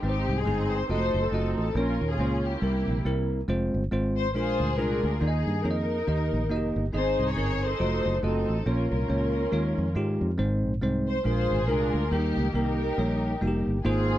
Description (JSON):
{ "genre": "uptempo gospel", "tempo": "139 BPM", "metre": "4/4", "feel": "swing 59% on 8ths", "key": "unclear", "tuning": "A4 = 440 Hz", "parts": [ { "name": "muted studio string section", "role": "melody", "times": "0.0-14.2 s", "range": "Bb3 to Db5", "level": "-30 LUFS", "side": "left 2 dB", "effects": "none" }, { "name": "bell-like tine electric piano", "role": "accompaniment", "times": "0.0-14.2 s", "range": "Ab2 to Eb5", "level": "-28 LUFS", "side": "equal", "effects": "none" }, { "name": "fingered electric bass", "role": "bass", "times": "0.0-14.2 s", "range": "F1 to Ab2", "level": "-28 LUFS", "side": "equal", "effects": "none" } ], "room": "light reverb", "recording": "dry, close 1970s-style studio recording", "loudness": "-24 LUFS", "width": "side -13 dB against mid", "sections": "0.0-13.8 A section", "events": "none", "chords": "0.0 Ab; 0.9 F7b9; 1.8 Bbm; 2.6 C7; 3.5 Fm; 4.3 Bb7; 5.2 Ebsus4; 6.1 Eb; 6.9 Ab; 7.8 F7b9; 8.7 Bbm; 9.5 Eb9sus4; 10.4 Ab; 11.3 Bb7; 12.1 Eb" }